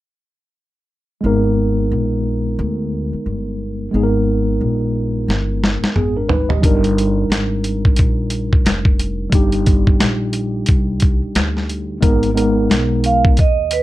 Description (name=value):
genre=hip hop, jazz-hop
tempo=89 BPM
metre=4/4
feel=swing 60% on 16ths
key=unclear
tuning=A4 = 440 Hz
part: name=mellow tine electric piano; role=accompaniment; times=1.2-13.4 s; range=Gb3 to Eb5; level=-19 LUFS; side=equal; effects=medium stereo tremolo
part: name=upright bass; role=bass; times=1.2-13.8 s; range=F1 to Eb2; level=-21 LUFS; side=equal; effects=none
part: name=dusty soul sampler-style drum kit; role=drums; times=5.3-13.8 s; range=hi-hat, kick drum, snare drum, toms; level=-15 LUFS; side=equal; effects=none
part: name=vibraphone with medium mallets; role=melody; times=13.1-13.8 s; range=Cb5 to F5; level=-16 LUFS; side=right 6 dB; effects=slapback echo
room=light reverb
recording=dark, warm production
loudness=-14 LUFS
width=side -16 dB against mid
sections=1.2-12.0 A section; 12.0-13.8 B section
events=drum fill 5.3-6.6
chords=1.2 Abmadd9; 6.6 Ebmaj7; 12.0 Abmadd9